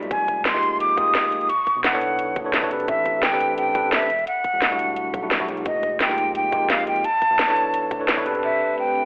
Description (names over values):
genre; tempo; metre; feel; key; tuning
liquid drum and bass; 173 BPM; 4/4; straight; unclear; A4 = 440 Hz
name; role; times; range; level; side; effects
tine electric piano; accompaniment; 0.0-9.1 s; G3 to C#5; -26 LUFS; equal; fast stereo tremolo, dub echo
smooth synth bass; bass; 0.0-8.4 s; E1 to E2; -36 LUFS; equal; none
garage drum kit; drums; 0.0-9.0 s; crash cymbal, hi-hat, snare drum; -22 LUFS; equal; low-pass filter on hats, studio reverb, low-pass filter on snare, low-pass filter on cymbals
breathy jazz flute; melody; 0.1-9.1 s; Eb5 to Eb6; -21 LUFS; equal; tape echo
electronic kick drum; drums; 0.1-8.2 s; none; -30 LUFS; equal; studio reverb
lush unison pad; sustained chords; 8.7-9.1 s; A3 to B4; -30 LUFS; equal; chorus, sidechain pumping
sub drop; sound effects; 8.4-9.1 s; none; -51 LUFS; equal; none
room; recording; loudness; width
moderate plate reverb, RT60 1.8 s; telephone sound; -18 LUFS; side -31 dB against mid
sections
0.0-8.4 A section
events
band accent 8.1; impact 8.4-9.1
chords
0.1 Fm11; 1.5 Bm11; 2.9 Am11; 4.1 Em11; 5.7 Fm11; 7.0 Bm11; 8.4 Am11